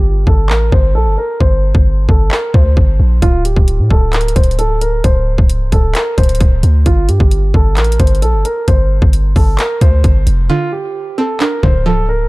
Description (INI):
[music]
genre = hip hop, trap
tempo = 132 BPM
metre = 4/4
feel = half-time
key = D minor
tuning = A4 = 440 Hz
[part]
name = dark concert grand piano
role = melody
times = 0.0-12.3 s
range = F4 to C5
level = -18 LUFS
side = equal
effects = low-pass filter, digital delay
[part]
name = warm 808-style bass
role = bass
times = 0.0-12.3 s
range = C1 to A2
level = -12 LUFS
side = equal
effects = none
[part]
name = trap drum kit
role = drums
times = 0.3-11.7 s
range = handclaps, hi-hat, kick drum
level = -12 LUFS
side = equal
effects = none
[part]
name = string-like resonator pluck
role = accompaniment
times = 10.5-12.3 s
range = D3 to D4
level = -18 LUFS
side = right 3 dB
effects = chorus, low-pass filter
[sound]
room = digital ambience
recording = dark, warm production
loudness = -10 LUFS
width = side -22 dB against mid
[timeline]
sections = 0.0-12.3 A section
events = break 0.0-3.2, 10.5-12.3; filter sweep 0.0-10.5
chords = 0.0 N.C.; 3.2 D5; 6.9 N.C.; 10.5 Dm7